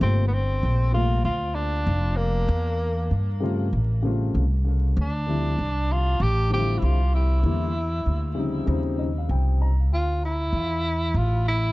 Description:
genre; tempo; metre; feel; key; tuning
hip hop, jazz-hop; 97 BPM; 4/4; swing 60% on 16ths; D minor; A4 = 442 Hz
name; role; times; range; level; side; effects
breathy tenor saxophone; melody; 0.0-11.7 s; Bb3 to G4; -28 LUFS; equal; tape echo
dark baby grand piano; accompaniment; 0.0-9.9 s; C3 to Bb5; -30 LUFS; left 3 dB; tape echo
upright bass; bass; 0.0-11.7 s; F1 to G2; -22 LUFS; equal; none
room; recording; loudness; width
small room ambience; echo-heavy mix, vinyl crackle, nothing above 7.9 kHz; -21 LUFS; side -19 dB against mid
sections
0.0-11.7 A section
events
grand piano fill 8.7-9.9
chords
0.0 Gm11; 2.5 Edim; 3.7 A7alt; 5.0 Dm11; 7.4 Em7b5; 8.7 Eb13; 9.9 Dmadd9

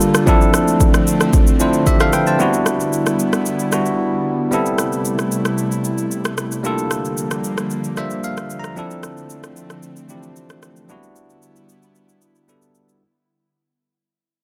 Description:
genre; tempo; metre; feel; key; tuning
amapiano; 113 BPM; 4/4; straight; unclear; A4 = 440 Hz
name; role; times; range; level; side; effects
barky tine electric piano; accompaniment; 0.0-13.0 s; E3 to Bb5; -22 LUFS; equal; none
airy breathy pad; sustained chords; 0.0-13.0 s; C3 to F4; -26 LUFS; equal; chorus, sidechain pumping
deep house drum kit; drums; 0.0-13.0 s; kick drum, rim click, shaker; -20 LUFS; equal; none
room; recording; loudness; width
light reverb, digital ambience; none; -18 LUFS; mono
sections
0.0-13.0 A section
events
fade-out 0.0-13.0; drums muted 4.0-4.5; tine electric piano fill 7.7-8.8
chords
0.3 Dm7; 2.4 Em7; 4.5 Am7; 6.6 Gm7; 8.8 Dm7; 10.9 Em7

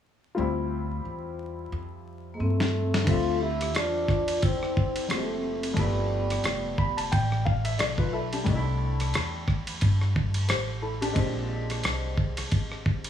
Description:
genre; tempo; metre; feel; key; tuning
hip hop, jazz-hop; 89 BPM; 4/4; swing 58% on 16ths; D minor; A4 = 439 Hz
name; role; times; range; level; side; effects
warm upright piano; accompaniment; 0.3-13.1 s; D3 to B5; -32 LUFS; left 3 dB; none
upright bass; bass; 0.4-13.1 s; F1 to G2; -29 LUFS; equal; none
vibraphone with medium mallets; second line; 2.3-7.1 s; Bb3 to A4; -34 LUFS; left 2 dB; none
trombone with cup mute; melody; 2.4-7.1 s; G3 to F4; -30 LUFS; equal; analog delay
dusty soul sampler-style drum kit; drums; 2.6-13.1 s; hi-hat, kick drum, ride cymbal, rim click, snare drum; -28 LUFS; equal; overdrive
room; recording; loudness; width
light reverb, studio reverb; vinyl crackle; -24 LUFS; side -9 dB against mid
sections
0.4-3.1 A section; 3.1-13.1 B section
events
drum fill 1.7-3.1; upright piano fill 6.4-8.5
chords
0.4 Dm11; 5.8 G13; 8.5 C69; 11.2 Bb13

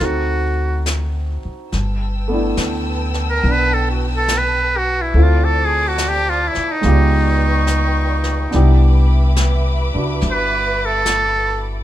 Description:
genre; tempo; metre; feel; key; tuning
jazz; 71 BPM; 4/4; swing 67% on 8ths; G major; A4 = 441 Hz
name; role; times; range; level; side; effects
trumpet with metal mute; melody; 0.0-11.7 s; Eb4 to B4; -19 LUFS; right 1 dB; none
warm concert grand piano; accompaniment; 0.0-11.8 s; G#3 to G4; -24 LUFS; right 2 dB; none
upright bass; bass; 0.0-11.8 s; G1 to D2; -17 LUFS; equal; none
jazz brush drum kit; drums; 0.0-11.8 s; brushed snare drum, hi-hat, snare drum; -27 LUFS; left 1 dB; none
warm symphonic string section; sustained chords; 1.7-11.8 s; B4 to E6; -26 LUFS; equal; none
room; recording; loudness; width
little or no reverb; minimal, uncompressed stereo recording; -14 LUFS; side -13 dB against mid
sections
0.0-1.7 A section; 1.7-11.8 B section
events
muted trumpet solo 1.7-11.8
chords
0.0 D7b9; 1.7 G69; 5.1 Dm7; 6.8 C#7#11; 8.5 Cmaj9

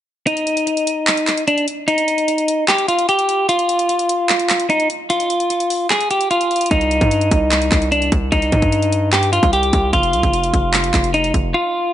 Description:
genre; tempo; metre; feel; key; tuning
hip hop, trap; 149 BPM; 4/4; half-time; C minor; A4 = 439 Hz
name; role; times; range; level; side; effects
clean electric guitar; melody; 0.3-11.9 s; D4 to Ab4; -16 LUFS; equal; digital delay
trap drum kit; drums; 0.3-11.4 s; handclaps, hi-hat, kick drum; -20 LUFS; equal; overdrive
distorted 808-style bass; bass; 6.7-11.5 s; F1 to G2; -19 LUFS; equal; distortion
room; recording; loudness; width
light reverb, digital ambience; nothing above 10.6 kHz; -14 LUFS; side -11 dB against mid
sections
0.3-11.9 A section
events
kick muted 0.3-6.7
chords
0.3 N.C.; 6.7 Cm; 9.9 F5

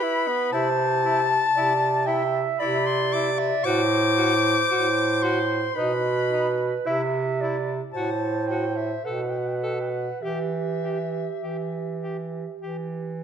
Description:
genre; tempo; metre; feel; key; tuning
classical, lyrical piece for single-reed quartet; 49-58 BPM; 3/4; rubato; E minor; A4 = 439 Hz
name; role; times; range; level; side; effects
warm soprano saxophone; melody; 0.0-12.6 s; E5 to D6; -26 LUFS; left 5 dB; none
dark clarinet; second line; 0.0-13.2 s; G4 to E5; -27 LUFS; right 6 dB; none
clear tenor saxophone; accompaniment; 0.0-12.8 s; B3 to A4; -31 LUFS; left 3 dB; none
bright bass clarinet; bass; 0.5-13.2 s; A2 to E3; -26 LUFS; right 1 dB; none
room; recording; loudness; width
moderate recital hall reverb, RT60 1.5 s; dark, warm production; -22 LUFS; side -8 dB against mid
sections
0.0-13.2 A section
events
none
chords
0.0 E5; 0.5 C; 3.7 F#dim/A; 5.8 B; 6.9 C; 7.9 F#dim/A; 9.1 Gmaj9/B; 10.2 Em

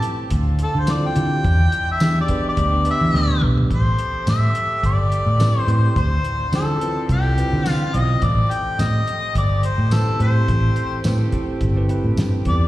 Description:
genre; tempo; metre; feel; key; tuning
straight-eighth soul blues; 106 BPM; 4/4; swing 54% on 16ths; A minor; A4 = 440 Hz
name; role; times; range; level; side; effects
mellow harmonica; melody; 0.0-12.7 s; G4 to G5; -23 LUFS; left 2 dB; overdrive, slapback echo, tape echo
bell-like tine electric piano; accompaniment; 0.0-12.7 s; B3 to C5; -27 LUFS; right 2 dB; slapback echo
clear horn section; sustained chords; 0.0-12.7 s; F3 to G4; -35 LUFS; right 2 dB; none
cloth-damped thuddy drum kit; drums; 0.0-12.6 s; hi-hat, kick drum, snare drum, tambourine, toms; -25 LUFS; equal; slapback echo
vintage muted fingered electric bass; bass; 0.3-12.7 s; G1 to E3; -18 LUFS; equal; none
room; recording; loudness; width
little or no reverb; live gig heard through the venue's PA, recital hall reverb; -16 LUFS; side -16 dB against mid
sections
0.0-3.7 A section; 3.7-12.7 B section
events
harmonica solo 0.0-3.7; drum fill 3.1-3.7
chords
0.3 Dm7; 1.4 E7#9; 3.7 Am7; 6.0 Dm7; 8.2 Am7

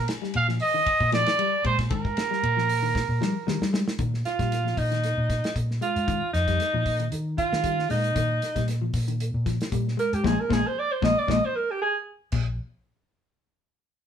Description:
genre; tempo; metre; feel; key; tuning
afrobeat; 115 BPM; 4/4; swing 54% on 16ths; Bb mixolydian; A4 = 440 Hz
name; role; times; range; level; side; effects
warm trumpet; melody; 0.0-3.7 s; Bb4 to F5; -24 LUFS; right 3 dB; none
fingered electric bass; bass; 0.0-12.6 s; Bb1 to G3; -27 LUFS; equal; none
warm soul drum kit; drums; 0.1-12.5 s; crash cymbal, hi-hat, kick drum, ride cymbal, snare drum; -31 LUFS; equal; none
mellow electric guitar; arpeggios; 0.2-12.5 s; Bb2 to Bb3; -30 LUFS; left 5 dB; none
clear alto saxophone; melody; 4.3-12.0 s; Eb4 to Eb5; -26 LUFS; right 2 dB; none
room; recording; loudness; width
moderate studio reverb, RT60 0.6 s; band playing live in one room; -23 LUFS; side -8 dB against mid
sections
0.0-4.0 A section; 4.0-12.3 B section; 12.3-14.1 C section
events
drum fill 2.9-4.0, 11.3-12.3; alto saxophone solo 4.0-12.3; band accent 10.2-12.3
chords
0.0 Bb7sus4; 12.3 N.C.

